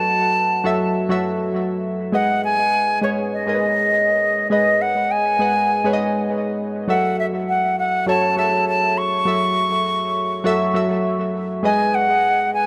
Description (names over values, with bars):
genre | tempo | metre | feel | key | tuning
afrobeats | 101 BPM | 4/4 | straight | F# dorian | A4 = 440 Hz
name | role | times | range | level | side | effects
silver concert flute | melody | 0.0-12.7 s | C#5 to C#6 | -21 LUFS | equal | analog delay
warm analog keys | accompaniment | 0.0-12.7 s | F#3 to F#5 | -23 LUFS | equal | chorus, analog delay
room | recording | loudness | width
moderate plate reverb, RT60 3.7 s | echo-heavy mix | -19 LUFS | mono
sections
0.0-6.9 A section; 6.9-12.7 B section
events
none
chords
0.0 F#m7; 2.1 G#m; 6.9 F#m7; 11.6 G#m